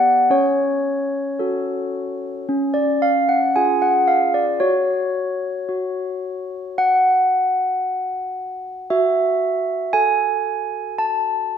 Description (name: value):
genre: classical, tune for handbells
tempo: 56 BPM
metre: 4/4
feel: straight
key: F# minor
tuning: A4 = 441 Hz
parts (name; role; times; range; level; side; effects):
- handbells; solo; 0.0-11.6 s; B3 to A5; -17 LUFS; equal; none
room: wet concert hall reverb, RT60 1.9 s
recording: minimal, uncompressed stereo recording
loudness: -17 LUFS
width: side -8 dB against mid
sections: 0.0-11.6 A section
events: none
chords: 0.3 F#m/C#; 2.5 C#; 4.6 N.C.; 8.9 A5/F#